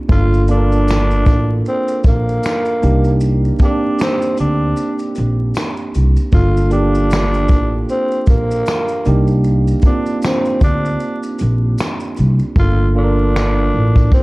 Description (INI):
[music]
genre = lo-fi hip hop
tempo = 77 BPM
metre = 4/4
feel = swing 60% on 16ths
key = G minor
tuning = A4 = 440 Hz
[part]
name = tine electric piano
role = accompaniment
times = 0.0-14.2 s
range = Bb3 to Bb4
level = -20 LUFS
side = right 2 dB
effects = low-pass filter
[part]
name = growling tenor saxophone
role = melody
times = 0.1-14.2 s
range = Bb3 to F4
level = -20 LUFS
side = equal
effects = low-pass filter, analog delay
[part]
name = upright bass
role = bass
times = 0.1-14.1 s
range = G1 to D2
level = -15 LUFS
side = equal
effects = none
[part]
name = vintage brush drum kit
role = drums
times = 0.1-14.2 s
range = finger snaps, hi-hat, kick drum, shaker, snare drum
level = -16 LUFS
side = equal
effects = none
[part]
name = tambourine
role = percussion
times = 0.9-12.0 s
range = none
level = -43 LUFS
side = left 5 dB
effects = none
[sound]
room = studio reverb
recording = dark, warm production, vinyl crackle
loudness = -13 LUFS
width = side -22 dB against mid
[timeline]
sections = 0.0-12.6 A section; 12.6-14.2 B section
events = hi-hats muted 12.6-14.2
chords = 0.1 Gm9; 2.8 Cm9; 6.3 Gm9; 9.1 Cm9; 12.6 Gm9